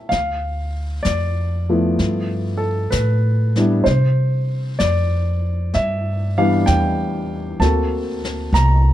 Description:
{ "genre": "jazz ballad", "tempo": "64 BPM", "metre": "4/4", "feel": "swing 68% on 8ths", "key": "unclear", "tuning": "A4 = 441 Hz", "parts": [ { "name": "warm grand piano", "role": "accompaniment", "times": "0.0-8.9 s", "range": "E3 to Bb5", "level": "-20 LUFS", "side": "equal", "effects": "none" }, { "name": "upright bass", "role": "bass", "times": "0.1-8.9 s", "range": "C2 to C3", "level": "-19 LUFS", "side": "equal", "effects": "none" }, { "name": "jazz brush drum kit", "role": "drums", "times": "0.1-8.9 s", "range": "brushed snare drum, hi-hat, snare drum", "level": "-29 LUFS", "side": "left 3 dB", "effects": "none" } ], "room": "little or no reverb", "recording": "dark, warm production", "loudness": "-17 LUFS", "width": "side -13 dB against mid", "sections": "0.0-8.9 A section", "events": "none", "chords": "0.1 Dmadd9; 2.0 G13; 3.9 Cmaj9; 7.6 D7b13" }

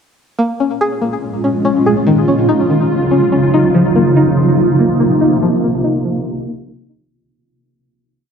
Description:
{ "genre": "hip hop", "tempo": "143 BPM", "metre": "4/4", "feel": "half-time", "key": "unclear", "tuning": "A4 = 440 Hz", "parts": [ { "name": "granular cloud pad", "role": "sustained chords", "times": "1.0-7.1 s", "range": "Bb2 to F4", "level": "-13 LUFS", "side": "right 1 dB", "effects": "built-in reverb" }, { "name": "string-like resonator pluck", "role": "arpeggios", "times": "0.4-7.1 s", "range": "Eb3 to Ab4", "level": "-16 LUFS", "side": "left 1 dB", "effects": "chorus, ping-pong delay" } ], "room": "wet lush hall reverb, RT60 2.5 s", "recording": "low-pass filter", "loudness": "-11 LUFS", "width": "side -7 dB against mid", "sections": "0.4-7.1 breakdown", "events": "filter sweep 0.4-7.1; fade-out 5.4-7.1", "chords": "0.4 Bbm7; 2.1 Ebm9; 3.7 F7sus4" }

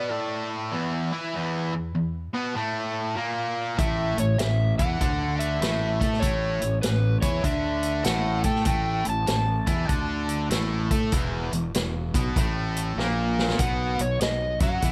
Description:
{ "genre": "blues rock power trio and southern rock", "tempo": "98 BPM", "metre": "4/4", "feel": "swing 65% on 8ths", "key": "unclear", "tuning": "A4 = 440 Hz", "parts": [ { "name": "overdriven slide guitar", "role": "melody", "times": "0.0-14.9 s", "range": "B4 to A5", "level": "-31 LUFS", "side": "equal", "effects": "none" }, { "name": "distorted electric guitar", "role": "riff", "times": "0.0-14.9 s", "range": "E2 to A4", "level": "-30 LUFS", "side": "equal", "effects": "overdrive" }, { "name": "fuzz fingered electric bass", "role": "bass", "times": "3.8-14.9 s", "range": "E1 to A2", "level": "-31 LUFS", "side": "equal", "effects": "overdrive" }, { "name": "vintage drum kit", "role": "drums", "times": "3.8-14.9 s", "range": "hi-hat, kick drum, snare drum", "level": "-30 LUFS", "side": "equal", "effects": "none" } ], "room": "little or no reverb", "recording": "none", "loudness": "-25 LUFS", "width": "mono", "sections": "0.0-14.9 A section", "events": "drum fill 13.0-13.6", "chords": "0.0 E5; 3.8 A5; 11.1 E5; 13.6 B" }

